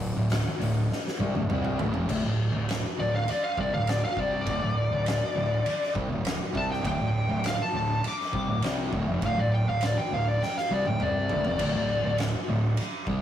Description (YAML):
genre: stoner and doom metal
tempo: 101 BPM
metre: 4/4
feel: straight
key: D minor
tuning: A4 = 440 Hz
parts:
  - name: fuzz guitar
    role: riff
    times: 0.0-13.2 s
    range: D2 to C4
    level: -32 LUFS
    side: left 3 dB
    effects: distortion
  - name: thick fuzz guitar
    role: riff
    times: 0.0-13.2 s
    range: D2 to C4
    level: -30 LUFS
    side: right 2 dB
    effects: distortion
  - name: fuzz fingered electric bass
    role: bass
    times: 0.0-13.2 s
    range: D1 to C2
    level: -33 LUFS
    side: equal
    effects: overdrive
  - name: oversized low-tuned drum kit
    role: drums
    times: 0.0-13.2 s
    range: crash cymbal, hi-hat, kick drum, ride cymbal, snare drum, toms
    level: -32 LUFS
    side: equal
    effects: none
  - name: fuzz lead guitar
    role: melody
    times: 3.0-12.2 s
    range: D5 to D6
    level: -28 LUFS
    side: left 1 dB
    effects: distortion, slapback echo
room: wet booth ambience, RT60 0.1 s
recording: rough rehearsal-room recording, warm saturation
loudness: -24 LUFS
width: side -10 dB against mid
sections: 0.0-2.1 A section; 2.1-13.2 B section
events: drum fill 0.9-2.1, 10.4-11.6; lead electric guitar solo 2.1-13.2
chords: 0.0 Dm; 2.1 D5